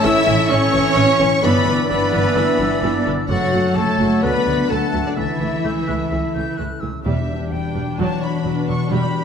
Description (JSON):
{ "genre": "cinematic, heroic adventure film score", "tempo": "129 BPM", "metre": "4/4", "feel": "straight", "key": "E dorian", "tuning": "A4 = 438 Hz", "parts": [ { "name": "rich symphonic violin section", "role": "melody", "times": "0.0-9.2 s", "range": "D5 to E6", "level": "-27 LUFS", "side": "left 2 dB", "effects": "none" }, { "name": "bright concert flute", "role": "second line", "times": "0.0-9.2 s", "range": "E5 to A6", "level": "-30 LUFS", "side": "left 1 dB", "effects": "none" }, { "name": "warm clarinet", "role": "second line", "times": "0.0-6.8 s", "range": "A4 to F#5", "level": "-28 LUFS", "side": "left 1 dB", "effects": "none" }, { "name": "warm oboe", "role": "second line", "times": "0.0-6.8 s", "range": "C#5 to F#5", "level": "-28 LUFS", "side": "left 1 dB", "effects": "none" }, { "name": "warm symphonic violin section", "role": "second line", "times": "0.0-9.2 s", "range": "D4 to E5", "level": "-26 LUFS", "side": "left 3 dB", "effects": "none" }, { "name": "warm symphonic viola section", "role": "accompaniment", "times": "0.0-9.2 s", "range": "E3 to D4", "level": "-26 LUFS", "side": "right 2 dB", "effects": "none" }, { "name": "dark French horn section", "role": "sustained chords", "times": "0.0-6.6 s", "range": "D3 to E4", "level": "-25 LUFS", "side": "left 4 dB", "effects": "none" }, { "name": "warm trombone section", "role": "sustained chords", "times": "0.0-9.2 s", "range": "B2 to D4", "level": "-28 LUFS", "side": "right 4 dB", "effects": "none" }, { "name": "concert harp", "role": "arpeggios", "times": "0.0-9.2 s", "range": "F#2 to B5", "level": "-25 LUFS", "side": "left 10 dB", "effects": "none" }, { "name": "mellow trumpet section", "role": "stabs", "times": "0.0-9.2 s", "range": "D4 to E5", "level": "-25 LUFS", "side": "right 1 dB", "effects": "none" }, { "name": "warm symphonic cello section", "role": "bass", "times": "0.0-9.0 s", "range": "E2 to E4", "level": "-24 LUFS", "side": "right 2 dB", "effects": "none" }, { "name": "warm symphonic double bass section", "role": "bass", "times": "0.1-9.0 s", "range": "E1 to D2", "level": "-24 LUFS", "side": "right 3 dB", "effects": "none" }, { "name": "timpani", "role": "percussion", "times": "7.1-7.7 s", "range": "E2", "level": "-27 LUFS", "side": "left 1 dB", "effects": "none" } ], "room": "wet scoring stage reverb, RT60 1.7 s", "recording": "none", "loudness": "-16 LUFS", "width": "side -7 dB against mid", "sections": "0.0-7.1 A section; 7.1-9.2 B section", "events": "none", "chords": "0.0 A; 1.4 Em7/G; 3.3 F#m; 4.2 D; 5.2 A/C#; 7.1 Em7; 8.0 Bm/E" }